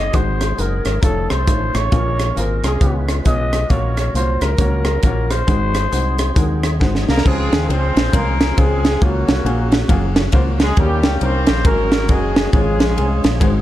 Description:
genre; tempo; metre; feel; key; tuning
uptempo gospel; 136 BPM; 4/4; swing 61% on 8ths; Db major; A4 = 440 Hz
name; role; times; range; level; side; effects
growling trumpet; melody; 0.0-6.8 s; Ab4 to Eb5; -23 LUFS; equal; none
tonewheel organ; sustained chords; 0.0-13.6 s; Eb3 to Cb5; -30 LUFS; right 3 dB; slow rotary speaker, overdrive, chorus vibrato
fingered electric bass; bass; 0.0-13.6 s; F1 to Eb2; -19 LUFS; equal; none
warm baby grand piano; accompaniment; 0.1-13.6 s; Ab2 to Db5; -25 LUFS; left 3 dB; none
crisp fusion drum kit; drums; 0.1-13.5 s; crash cymbal, hi-hat, kick drum, ride cymbal, rim click, snare drum; -17 LUFS; equal; none
mellow horn section; melody; 7.1-13.4 s; Gb3 to C5; -21 LUFS; equal; slapback echo
room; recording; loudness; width
small room reverb; dark, warm production; -14 LUFS; side -13 dB against mid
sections
0.0-7.3 A section; 7.3-13.6 B section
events
drum fill 6.8-7.3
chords
0.0 Ab7; 1.0 F7b13; 1.9 Bbm7; 2.8 Db7; 3.7 Gbmaj7/Bb; 5.5 Ab7; 7.3 Dbmaj7; 9.0 Gbmaj7; 10.8 Eb7; 11.7 Ab9sus4; 12.5 Db/Ab

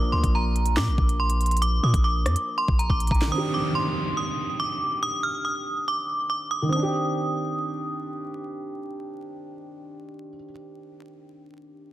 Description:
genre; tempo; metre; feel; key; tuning
hip hop, drill; 141 BPM; 4/4; half-time; C minor; A4 = 440 Hz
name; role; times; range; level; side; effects
metallic FM bell; melody; 0.0-8.0 s; Bb5 to F6; -27 LUFS; right 1 dB; chorus, low-pass filter, digital delay
dark concert grand piano; accompaniment; 0.0-11.9 s; Eb3 to Bb4; -31 LUFS; right 1 dB; low-pass filter
long sustained 808-style bass; bass; 0.0-3.3 s; Bb1 to Bb2; -23 LUFS; equal; none
drill drum kit; drums; 0.2-3.3 s; finger snaps, hi-hat, kick drum, rim click, snare drum; -24 LUFS; equal; none
downlifter; sound effects; 3.3-6.7 s; none; -34 LUFS; right 1 dB; none
room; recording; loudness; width
light reverb; dense, heavily limited modern master, vinyl crackle; -22 LUFS; side -14 dB against mid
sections
0.0-3.3 A section; 3.3-6.7 B section; 6.7-10.1 C section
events
drum fill 2.9-3.3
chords
0.0 Bb; 3.3 Cmadd9

